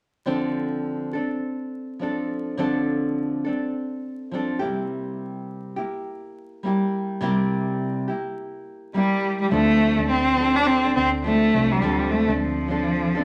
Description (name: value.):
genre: pop.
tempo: 104 BPM.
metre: 4/4.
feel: swing 60% on 16ths.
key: D minor.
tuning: A4 = 440 Hz.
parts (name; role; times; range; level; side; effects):
nylon-string guitar; accompaniment; 0.3-13.2 s; C3 to A4; -27 LUFS; equal; none.
warm cello; melody; 9.0-13.2 s; F3 to D4; -22 LUFS; equal; none.
vintage muted fingered electric bass; bass; 9.5-13.2 s; C2 to D2; -33 LUFS; equal; none.
room: moderate large studio reverb, RT60 1.2 s.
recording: vinyl crackle.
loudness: -23 LUFS.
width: mono.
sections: 0.3-9.5 A section; 9.5-13.2 B section.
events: none.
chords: 0.3 Dm7; 4.6 C7; 9.5 Dm7.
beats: | 0.27 0.84 1.42 2.00 | 2.58 3.16 3.74 4.32 | 4.89 5.47 6.05 6.63 | 7.21 7.79 8.36 8.94 | 9.52 10.10 10.67 11.25 | 11.83 12.40 12.98.